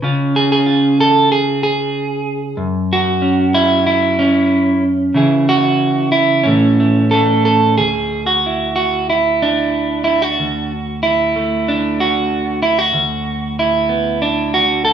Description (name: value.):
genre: folk, solo fingerstyle acoustic guitar.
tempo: 93 BPM.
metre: 4/4.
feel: rubato.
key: unclear.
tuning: A4 = 442 Hz.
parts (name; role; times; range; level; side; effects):
clean electric guitar; solo; 0.0-14.9 s; D2 to A4; -13 LUFS; right 2 dB; none.
room: wet large studio reverb, RT60 1.1 s.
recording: band playing live in one room, small room ambience.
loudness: -13 LUFS.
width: side -8 dB against mid.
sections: 0.0-7.8 A section; 7.8-14.9 B section.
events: none.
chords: 0.0 C#; 2.6 F#5; 5.1 C#m; 6.5 A; 7.8 Dadd9; 12.9 Bm/D.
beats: | 0.03 0.67 1.30 1.94 | 2.58 3.21 3.85 4.50 | 5.15 5.80 6.45 7.13 | 7.80 8.45 9.10 9.74 | 10.39 11.04 11.68 12.31 | 12.94 13.57 14.21 14.85.